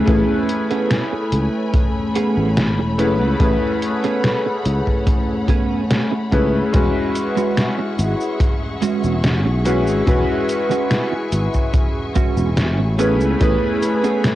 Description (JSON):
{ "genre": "vaporwave", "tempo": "72 BPM", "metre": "4/4", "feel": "straight", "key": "E major", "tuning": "A4 = 437 Hz", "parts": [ { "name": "clear electric grand piano", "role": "accompaniment", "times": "0.0-14.3 s", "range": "G#3 to B4", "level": "-20 LUFS", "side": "left 1 dB", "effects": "lush chorus, vintage 12-bit sampler grit, cassette tape, tape echo" }, { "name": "bright studio string section", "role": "sustained chords", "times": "0.0-14.3 s", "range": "A3 to C#6", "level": "-28 LUFS", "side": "left 1 dB", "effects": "cassette tape" }, { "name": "clean electric guitar", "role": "riff", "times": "0.0-14.2 s", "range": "G#3 to G#4", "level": "-24 LUFS", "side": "right 6 dB", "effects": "lush chorus, cassette tape, tape echo" }, { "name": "sustaining fretless electric bass", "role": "bass", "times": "0.1-13.6 s", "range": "E1 to C#2", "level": "-19 LUFS", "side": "equal", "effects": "none" }, { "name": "detuned 8-bit digital drum machine", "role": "drums", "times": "0.1-14.3 s", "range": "cabasa, hi-hat, snare drum", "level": "-21 LUFS", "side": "equal", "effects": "overdrive, cassette tape" }, { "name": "kick drum", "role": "drums", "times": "0.1-13.6 s", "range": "none", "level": "-19 LUFS", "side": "equal", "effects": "cassette tape" } ], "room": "light reverb, small room ambience", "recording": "home recording on cassette", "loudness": "-16 LUFS", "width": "side -14 dB against mid", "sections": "0.0-14.3 A section", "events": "none", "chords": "0.0 E69; 13.0 Amaj9", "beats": "| 0.07 0.91 1.74 2.57 | 3.41 4.24 5.07 5.91 | 6.74 7.57 8.41 9.24 | 10.07 10.91 11.74 12.57 | 13.41 14.24" }